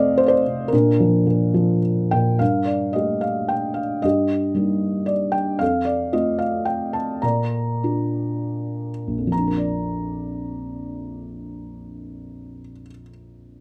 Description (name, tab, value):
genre	classical, lyrical solo piano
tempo	76-117 BPM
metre	3/4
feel	rubato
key	Bb major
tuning	A4 = 440 Hz
part	felt-muted upright piano	solo	0.0-13.6 s	Bb1 to Bb5	-22 LUFS	equal	none
room	light reverb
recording	close, detailed microphones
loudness	-21 LUFS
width	mono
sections	0.0-2.4 A section; 2.4-9.3 B section; 9.3-13.6 C section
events	slowing down 5.6-9.3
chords	0.0 F; 0.7 Bb; 2.4 Gmadd9; 4.0 Eb/G; 5.6 F; 7.2 Bb